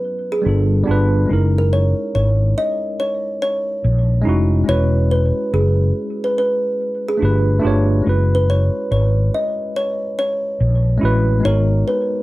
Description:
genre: lo-fi hip hop.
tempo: 71 BPM.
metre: 4/4.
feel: swing 66% on 16ths.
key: unclear.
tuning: A4 = 441 Hz.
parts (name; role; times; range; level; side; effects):
kalimba; melody; 0.0-12.2 s; G#4 to D#5; -21 LUFS; equal; none.
mellow tine electric piano; accompaniment; 0.0-12.2 s; G3 to C#5; -22 LUFS; equal; medium stereo tremolo.
mellow fretless electric bass; bass; 0.5-11.8 s; E1 to A#1; -15 LUFS; equal; ensemble chorus.
room: light reverb.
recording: cassette tape.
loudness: -15 LUFS.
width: side -18 dB against mid.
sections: 0.0-11.4 A section.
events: none.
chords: 0.4 G9; 1.3 F#13; 4.7 E69; 7.2 G9; 8.1 F#9sus4; 11.4 G#m7.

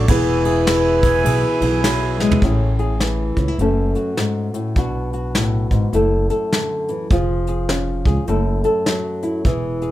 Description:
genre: acoustic folk duo or small band.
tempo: 102 BPM.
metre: 4/4.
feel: swing 62% on 8ths.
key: unclear.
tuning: A4 = 439 Hz.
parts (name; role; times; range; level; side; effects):
nylon-string guitar; accompaniment; 0.0-9.9 s; F#2 to A4; -19 LUFS; left 1 dB; none.
hand-pumped harmonium; sustained chords; 0.0-2.4 s; E4 to G#5; -22 LUFS; right 4 dB; none.
upright bass; bass; 0.0-9.9 s; E1 to C#2; -21 LUFS; equal; none.
soft brush drum kit; drums; 0.1-9.9 s; hi-hat, kick drum, ride cymbal, snare drum, toms; -21 LUFS; equal; none.
room: light reverb.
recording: none.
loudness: -16 LUFS.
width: side -14 dB against mid.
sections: 0.0-2.4 A section; 2.4-9.9 B section.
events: drum fill 2.1.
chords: 0.1 E; 2.4 Amaj7; 3.6 F#m; 4.8 Bm; 5.9 F#m7; 7.1 C#/E#; 8.3 F#m7.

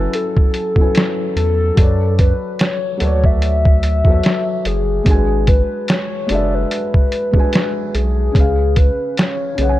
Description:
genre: lo-fi hip hop.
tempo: 73 BPM.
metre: 4/4.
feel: swing 58% on 16ths.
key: unclear.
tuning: A4 = 440 Hz.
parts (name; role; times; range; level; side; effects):
warbly nostalgic lead; melody; 0.0-9.8 s; G#4 to E5; -21 LUFS; left 3 dB; chorus, analog delay.
felt-muted upright piano; accompaniment; 0.0-9.8 s; C#3 to G#5; -22 LUFS; equal; none.
round analog bass; bass; 0.0-9.8 s; F#1 to F#2; -17 LUFS; equal; none.
lo-fi sampler-style drum kit; drums; 0.1-9.8 s; hi-hat, kick drum, snare drum; -15 LUFS; equal; none.
room: little or no reverb.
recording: dark, warm production, faint mains hum.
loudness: -13 LUFS.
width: side -15 dB against mid.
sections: 0.0-9.8 A section.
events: none.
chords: 0.0 F#m7; 1.8 Bm9; 5.1 G#m7b5; 8.3 C#7.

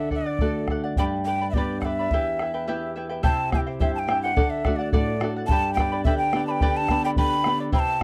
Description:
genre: andean folk, Andean ensemble.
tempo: 106 BPM.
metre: 2/4.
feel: straight.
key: unclear.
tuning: A4 = 440 Hz.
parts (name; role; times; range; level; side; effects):
breathy hollow quena; melody; 0.0-8.0 s; D5 to B5; -28 LUFS; equal; none.
charango; accompaniment; 0.0-8.0 s; E4 to B5; -32 LUFS; equal; none.
flamenco guitar; accompaniment; 0.0-8.0 s; E2 to G4; -30 LUFS; equal; none.
bombo; percussion; 0.1-8.0 s; none; -27 LUFS; equal; none.
room: little or no reverb.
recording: dry, close 1970s-style studio recording.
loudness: -24 LUFS.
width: mono.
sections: 0.0-3.2 A section; 3.2-8.0 B section.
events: break 2.7-3.2.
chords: 0.0 D; 1.0 G; 2.1 Em; 3.2 C; 4.4 D; 5.5 G.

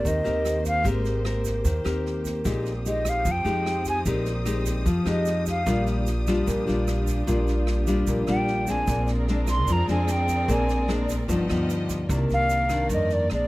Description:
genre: bossa nova.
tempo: 150 BPM.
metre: 4/4.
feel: straight.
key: unclear.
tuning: A4 = 440 Hz.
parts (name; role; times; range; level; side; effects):
hollow concert flute; melody; 0.0-5.9, 8.3-13.5 s; D5 to C6; -26 LUFS; right 1 dB; none.
nylon-string guitar; accompaniment; 0.0-13.5 s; G2 to Bb4; -26 LUFS; left 2 dB; none.
rich studio string section; sustained chords; 0.0-13.5 s; Bb3 to Eb6; -34 LUFS; right 1 dB; none.
upright bass; bass; 0.0-13.5 s; G1 to F2; -27 LUFS; equal; none.
swinging big-band drum kit; drums; 0.1-13.4 s; kick drum, rim click, snare drum; -34 LUFS; right 1 dB; none.
tube shaker; percussion; 0.1-13.3 s; none; -41 LUFS; right 18 dB; none.
room: little or no reverb.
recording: dry, close 1970s-style studio recording.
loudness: -22 LUFS.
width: side -18 dB against mid.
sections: 0.0-12.1 A section; 12.1-13.5 B section.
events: flute solo 0.0-12.1.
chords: 0.0 Abmaj9; 2.5 Bb13sus4; 5.7 Ebmaj9/Bb; 8.9 Bb9; 11.3 G7b13; 12.1 Cm9.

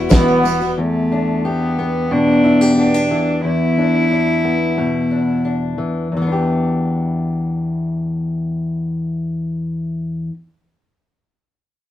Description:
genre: indie folk with a building arrangement.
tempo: 90 BPM.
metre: 4/4.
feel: straight.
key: E minor.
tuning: A4 = 440 Hz.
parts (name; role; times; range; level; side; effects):
warm cello; melody; 0.0-5.4 s; A3 to E4; -18 LUFS; right 1 dB; none.
picked twelve-string acoustic guitar; accompaniment; 0.0-0.8 s; E2 to F#4; -17 LUFS; left 2 dB; none.
upright bass; bass; 0.0-0.7 s; E1; -36 LUFS; right 1 dB; none.
clear trumpet; second line; 0.1-0.7 s; B3; -19 LUFS; right 5 dB; none.
tambourine; percussion; 0.1-0.7 s; none; -34 LUFS; right 6 dB; none.
fingerpicked steel-string acoustic guitar; accompaniment; 0.8-10.4 s; E2 to G4; -17 LUFS; left 2 dB; none.
room: wet studio reverb, RT60 0.6 s.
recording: rough rehearsal-room recording.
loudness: -15 LUFS.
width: side -12 dB against mid.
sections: 0.8-6.1 A section; 6.1-8.8 B section.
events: none.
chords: 0.0 Emadd9; 0.8 Em7.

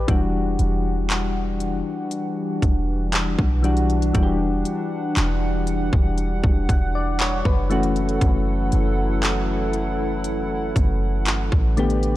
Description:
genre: contemporary R&B.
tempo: 59 BPM.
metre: 4/4.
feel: straight.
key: E dorian.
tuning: A4 = 442 Hz.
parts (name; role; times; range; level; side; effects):
soft electric-piano-like synth keys; accompaniment; 0.0-12.2 s; D3 to F#5; -25 LUFS; left 3 dB; chorus, tremolo.
clean 808-style bass; bass; 0.0-12.2 s; E1 to B1; -23 LUFS; equal; none.
hollow soft pad; sustained chords; 0.1-12.2 s; E3 to F#5; -29 LUFS; right 1 dB; chorus, sidechain pumping.
trap drum kit; drums; 0.1-12.1 s; handclaps, hi-hat, kick drum; -22 LUFS; equal; none.
room: digital ambience.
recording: dark, warm production.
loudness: -19 LUFS.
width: side -15 dB against mid.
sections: 0.0-12.2 A section.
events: none.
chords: 0.1 Em9; 7.7 F#m7.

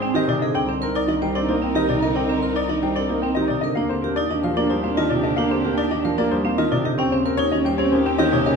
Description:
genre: classical, minimalist pattern music.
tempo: 112 BPM.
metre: 3/4.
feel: straight.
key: Eb major.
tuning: A4 = 440 Hz.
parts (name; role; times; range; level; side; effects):
bright baby grand piano; melody; 0.0-8.6 s; Bb4 to G5; -26 LUFS; left 10 dB; none.
alto flute; second line; 0.0-8.6 s; C4 to Eb4; -27 LUFS; right 5 dB; none.
warm concert grand piano; accompaniment; 0.0-8.6 s; C3 to C4; -24 LUFS; right 1 dB; none.
rich studio string section; sustained chords; 0.0-8.6 s; C4 to Bb4; -32 LUFS; left 1 dB; none.
vibraphone with hard mallets; arpeggios; 0.0-8.6 s; C4 to C5; -24 LUFS; right 4 dB; none.
mellow bass clarinet; bass; 0.0-8.6 s; C2 to Ab2; -30 LUFS; left 2 dB; none.
room: moderate scoring stage reverb, RT60 1.6 s.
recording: minimal, uncompressed stereo recording.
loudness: -19 LUFS.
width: side -5 dB against mid.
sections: 0.0-8.6 A section.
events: none.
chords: 0.0 Abmaj7; 0.6 Cm7; 3.8 Ebmaj9; 7.0 Eb7.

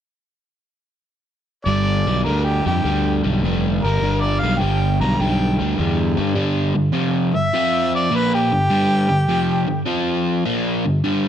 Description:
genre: rock.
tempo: 102 BPM.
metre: 4/4.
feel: swing 67% on 8ths.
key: G mixolydian.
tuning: A4 = 440 Hz.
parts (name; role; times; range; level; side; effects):
warm harmonica; melody; 1.7-10.0 s; G4 to Bb5; -22 LUFS; equal; overdrive.
crunchy overdriven guitar; riff; 1.7-11.3 s; F2 to F4; -19 LUFS; equal; none.
fuzz fingered electric bass; bass; 1.7-6.4 s; F1 to G2; -20 LUFS; equal; overdrive.
room: light reverb, studio reverb.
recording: none.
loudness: -17 LUFS.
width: side -9 dB against mid.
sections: 1.7-6.4 A section; 6.4-11.3 B section.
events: none.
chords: 1.7 G; 6.4 G5; 7.5 F5; 8.1 G5; 9.9 F5; 10.5 G5.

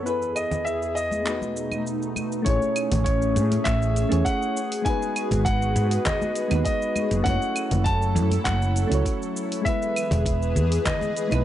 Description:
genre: sunset chillout.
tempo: 100 BPM.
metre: 4/4.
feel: straight.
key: unclear.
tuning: A4 = 440 Hz.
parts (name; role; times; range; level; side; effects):
dark baby grand piano; melody; 0.0-11.4 s; B4 to A5; -28 LUFS; equal; tape echo.
soft electric-piano-like synth keys; accompaniment; 0.0-11.4 s; G#3 to C#5; -30 LUFS; moving between left 4 dB and right 5 dB; chorus, auto-pan, tape echo.
airy breathy pad; sustained chords; 0.0-11.4 s; E2 to B4; -29 LUFS; left 1 dB; chorus.
smooth R&B drum kit; drums; 0.1-11.4 s; cabasa, claves, handclaps, hi-hat; -32 LUFS; right 1 dB; none.
congas; percussion; 0.5-11.4 s; none; -32 LUFS; left 2 dB; none.
woody fretless electric bass; bass; 2.5-11.4 s; E1 to A2; -22 LUFS; equal; lush chorus.
electronic kick drum; drums; 2.5-11.0 s; none; -28 LUFS; equal; none.
room: light reverb.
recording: dry, gritty hardware recording, nothing above 10.6 kHz.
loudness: -21 LUFS.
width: side -12 dB against mid.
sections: 0.0-2.5 A section; 2.5-11.4 B section.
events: none.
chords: 0.1 E; 1.3 B7; 2.5 Amaj7; 4.6 G#m7; 7.3 F#m7; 9.7 Emaj7.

